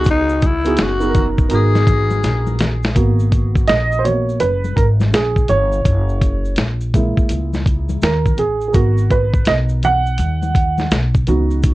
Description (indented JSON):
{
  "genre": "hip hop, jazz-hop",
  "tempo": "83 BPM",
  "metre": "4/4",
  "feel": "swing 65% on 16ths",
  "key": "G# minor",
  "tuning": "A4 = 441 Hz",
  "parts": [
    { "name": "growling tenor saxophone", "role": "melody", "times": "0.0-2.6 s", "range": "D#4 to G#4", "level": "-20 LUFS", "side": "left 3 dB", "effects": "analog delay" },
    { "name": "dark upright piano", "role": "accompaniment", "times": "0.0-11.7 s", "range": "G#3 to F#5", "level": "-19 LUFS", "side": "right 3 dB", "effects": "none" },
    { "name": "upright bass", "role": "bass", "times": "0.0-11.7 s", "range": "F#1 to D#2", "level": "-18 LUFS", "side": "equal", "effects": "none" },
    { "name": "maracas and congas", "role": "percussion", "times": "0.0-11.7 s", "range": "none", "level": "-28 LUFS", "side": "left 4 dB", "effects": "none" },
    { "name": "dusty soul sampler-style drum kit", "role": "drums", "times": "0.1-11.7 s", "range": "hi-hat, kick drum, snare drum", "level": "-17 LUFS", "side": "equal", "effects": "vintage 12-bit sampler grit" }
  ],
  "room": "little or no reverb",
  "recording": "cassette tape",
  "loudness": "-14 LUFS",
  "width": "side -18 dB against mid",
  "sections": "0.0-3.0 A section; 3.0-11.7 B section",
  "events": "drum fill 2.2-3.0; upright piano solo 3.0-11.7",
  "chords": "0.0 C#9sus4; 1.5 G#m9; 5.9 F#9; 8.7 G#m9"
}